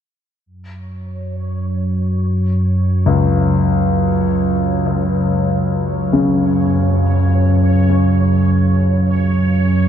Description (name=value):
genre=dark ambient drone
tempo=free time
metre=none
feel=none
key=unclear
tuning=A4 = 440 Hz
part: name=analog drone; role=drone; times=0.7-9.9 s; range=F#2 to F#3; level=-15 LUFS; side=right 1 dB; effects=chorus
part: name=bubbling stepped-filter texture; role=texture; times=1.1-9.9 s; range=C#5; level=-29 LUFS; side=right 2 dB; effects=chorus, built-in reverb
part: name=dark grand piano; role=arpeggios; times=3.1-9.9 s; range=C#2 to C#3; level=-18 LUFS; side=left 4 dB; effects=ping-pong delay
room=wet cathedral reverb, RT60 5.4 s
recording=in a vast, echoing space, cassette tape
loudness=-13 LUFS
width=side -9 dB against mid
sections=0.5-9.9 A section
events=fade-in on synth texture 0.5-9.9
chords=0.5 F#5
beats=free time